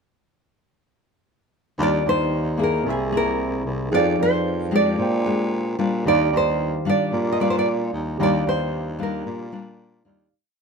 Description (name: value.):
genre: bossa nova.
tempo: 113 BPM.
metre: 4/4.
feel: straight.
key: Eb major.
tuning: A4 = 440 Hz.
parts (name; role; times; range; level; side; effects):
nylon-string guitar; melody; 1.8-10.0 s; G#4 to Eb5; -23 LUFS; right 2 dB; none.
barky tine electric piano; accompaniment; 1.8-10.3 s; C4 to G5; -30 LUFS; right 5 dB; none.
nylon-string guitar; accompaniment; 1.8-10.3 s; Bb2 to Ab4; -25 LUFS; left 3 dB; none.
growling baritone saxophone; bass; 1.8-10.3 s; C2 to Bb2; -25 LUFS; equal; none.
room: light reverb.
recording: minimal, uncompressed stereo recording.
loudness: -19 LUFS.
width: side -5 dB against mid.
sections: 1.8-10.3 A section.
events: fade-out 8.2-10.3.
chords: 1.8 Ebmaj9; 2.9 Caug7; 3.9 Fm7; 5.0 Bb13; 6.1 Ebmaj9.